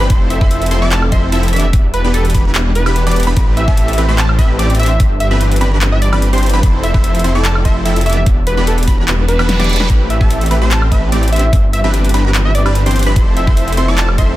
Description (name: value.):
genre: future bass.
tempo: 147 BPM.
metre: 4/4.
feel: half-time.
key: unclear.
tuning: A4 = 439 Hz.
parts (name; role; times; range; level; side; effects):
wide unison pluck; arpeggios; 0.0-14.4 s; A5 to E6; -25 LUFS; equal; sidechain pumping.
supersaw stab; riff; 0.0-14.4 s; E3 to E5; -19 LUFS; equal; cassette tape, sidechain pumping, tape echo.
wide detuned saw bass; bass; 0.0-14.4 s; E1 to A1; -14 LUFS; equal; chorus, sidechain pumping.
big-room dance drum kit; drums; 0.1-14.3 s; handclaps, hi-hat, snare drum, woodblock; -21 LUFS; equal; none.
electronic kick drum; drums; 0.1-14.3 s; none; -13 LUFS; equal; none.
plucky unison lead; melody; 0.3-14.3 s; A4 to A5; -22 LUFS; right 1 dB; sidechain pumping, dub echo.
reverse cymbal; sound effects; 9.2-9.9 s; none; -22 LUFS; right 4 dB; none.
room: digital ambience.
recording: dense, heavily limited modern master.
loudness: -10 LUFS.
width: side -15 dB against mid.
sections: 0.0-14.4 A section.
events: reverse cymbal 9.2-9.9; drum fill 9.5-9.9.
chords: 0.1 Fmaj7; 1.7 Em7; 3.4 Am9; 5.0 Cmaj9/G; 6.6 Fmaj7; 8.3 Em7; 9.9 Am9; 11.5 Cmaj9/G; 13.2 Fmaj7.